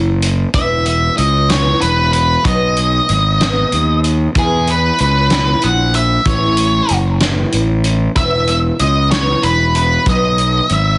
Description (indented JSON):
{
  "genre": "quiet-loud alternative rock",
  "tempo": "63 BPM (dotted quarters)",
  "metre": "6/8",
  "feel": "straight",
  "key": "E major",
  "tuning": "A4 = 440 Hz",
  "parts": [
    { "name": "picked steel-string acoustic guitar", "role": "arpeggios", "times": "0.0-11.0 s", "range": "E2 to B3", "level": "-24 LUFS", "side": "equal", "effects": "none" },
    { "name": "fuzz fingered electric bass", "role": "bass", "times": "0.0-11.0 s", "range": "E1 to E2", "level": "-18 LUFS", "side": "equal", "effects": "overdrive" },
    { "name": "loose indie drum kit", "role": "drums", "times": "0.2-10.8 s", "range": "hi-hat, kick drum, snare drum", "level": "-22 LUFS", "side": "equal", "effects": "none" },
    { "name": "octave-fuzz lead guitar", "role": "melody", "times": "0.5-11.0 s", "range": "G#4 to F#5", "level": "-18 LUFS", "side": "equal", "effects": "distortion" }
  ],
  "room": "light reverb, studio reverb",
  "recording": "heavily compressed radio sound, multiband compression, nothing above 10.7 kHz",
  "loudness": "-14 LUFS",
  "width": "mono",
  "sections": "0.0-11.0 A section",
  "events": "none",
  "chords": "0.0 A5; 0.5 E5; 2.5 B; 4.4 E5; 6.3 A; 8.2 E5; 10.1 B"
}